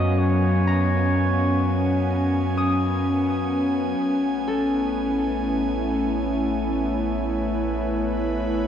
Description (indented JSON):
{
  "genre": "ambient",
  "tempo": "free time",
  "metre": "none",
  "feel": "none",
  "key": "unclear",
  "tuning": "A4 = 440 Hz",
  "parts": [
    { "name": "mellow flugelhorn", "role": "melody", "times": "0.0-3.0 s", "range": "C#5 to D#5", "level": "-30 LUFS", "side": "equal", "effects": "diffuse ambient delay" },
    { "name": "airy breathy pad", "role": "sustained chords", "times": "0.0-8.7 s", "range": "F#3 to G#5", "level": "-23 LUFS", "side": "left 1 dB", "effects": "chorus" },
    { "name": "Celtic harp", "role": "arpeggios", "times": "0.0-7.7 s", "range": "F#3 to D#6", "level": "-31 LUFS", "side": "left 2 dB", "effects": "diffuse ambient delay" },
    { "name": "warm sub bass", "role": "bass", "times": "0.0-8.7 s", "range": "A1 to F#2", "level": "-27 LUFS", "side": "right 1 dB", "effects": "none" },
    { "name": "bowed-like drone", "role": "drone", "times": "0.0-8.7 s", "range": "B3", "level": "-31 LUFS", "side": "right 2 dB", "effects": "built-in reverb" }
  ],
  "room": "wet concert hall reverb, RT60 2.1 s",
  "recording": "dark, warm production",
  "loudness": "-20 LUFS",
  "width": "side -9 dB against mid",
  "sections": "0.0-8.7 A section",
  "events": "none",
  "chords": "0.0 F#maj7; 4.0 Amaj7"
}